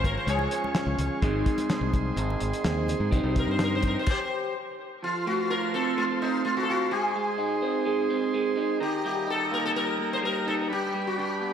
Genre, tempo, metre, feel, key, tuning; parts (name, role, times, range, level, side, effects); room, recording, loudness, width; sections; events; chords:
psychedelic rock; 127 BPM; 4/4; straight; A4 = 437 Hz
sitar; melody; 0.0-11.5 s; Eb4 to Db5; -29 LUFS; left 2 dB; diffuse ambient delay
combo organ; sustained chords; 0.0-11.5 s; G4 to Db6; -34 LUFS; right 3 dB
electric guitar through a small old amp; riff; 0.0-11.5 s; G2 to F4; -29 LUFS; right 2 dB; phaser
modern bright fingered electric bass; bass; 0.0-4.0 s; Ab1 to Ab2; -28 LUFS; equal
cloth-damped thuddy drum kit; drums; 0.0-4.2 s; crash cymbal, hi-hat, kick drum, snare drum; -29 LUFS; equal
congas; percussion; 0.0-3.9 s; -42 LUFS; left 4 dB
wet lush hall reverb, RT60 2.0 s; dreamy mix soaked in reverb; -24 LUFS; side -8 dB against mid
0.0-5.0 A section; 5.0-11.5 B section
sitar solo 0.0-5.0; stop 4.1-5.0
0.0 Db; 1.2 Ab; 3.1 Cm; 5.0 F; 6.9 Ab; 8.8 Eb; 10.7 G